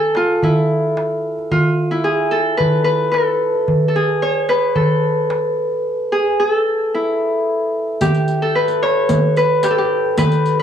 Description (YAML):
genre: Turkish makam ensemble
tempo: 111 BPM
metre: 4/4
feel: straight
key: E makam hicaz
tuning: A4 = 440 Hz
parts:
  - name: Celtic harp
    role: melody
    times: 0.0-10.6 s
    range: E4 to C#5-30c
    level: -16 LUFS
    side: left 1 dB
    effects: plate reverb
  - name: darbuka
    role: percussion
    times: 0.1-10.5 s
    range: none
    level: -20 LUFS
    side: right 2 dB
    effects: none
  - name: riq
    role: percussion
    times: 8.0-10.5 s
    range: none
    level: -25 LUFS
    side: equal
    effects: none
room: moderate booth ambience, RT60 0.2 s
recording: home recording on cassette, small room ambience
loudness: -14 LUFS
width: side -8 dB against mid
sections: 0.0-8.0 A section; 8.0-10.6 B section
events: none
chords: none